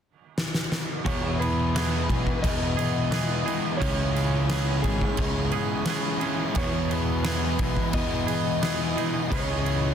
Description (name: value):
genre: rock, shoegaze and dream pop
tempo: 87 BPM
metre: 4/4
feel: straight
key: E major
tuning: A4 = 440 Hz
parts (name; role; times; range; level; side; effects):
- huge arena drum kit; drums; 0.4-9.8 s; crash cymbal, kick drum, snare drum; -28 LUFS; equal; none
- icy glass pad; sustained chords; 2.0-9.9 s; B4 to B5; -39 LUFS; right 2 dB; chorus, built-in reverb
- crunchy overdriven guitar; riff; 1.0-9.9 s; E2 to C#4; -31 LUFS; right 1 dB; none
- overdriven electric guitar; riff; 1.0-9.9 s; E2 to E4; -32 LUFS; left 10 dB; analog chorus
- twangy electric guitar; riff; 1.0-9.9 s; E2 to G#4; -32 LUFS; right 10 dB; reverse reverb
- electric guitar through a small old amp; melody; 1.1-9.9 s; G#4 to D#5; -33 LUFS; left 1 dB; analog delay
- fuzz picked electric bass; bass; 1.1-9.9 s; G#1 to E2; -28 LUFS; equal; overdrive
room: small room ambience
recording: dense, heavily limited modern master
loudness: -23 LUFS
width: side -8 dB against mid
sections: 0.0-1.1 A section; 1.1-9.9 B section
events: drum fill 0.4-1.1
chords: 0.0 N.C.; 1.1 Emaj7; 3.8 C#m7; 6.6 Emaj7; 9.3 C#m7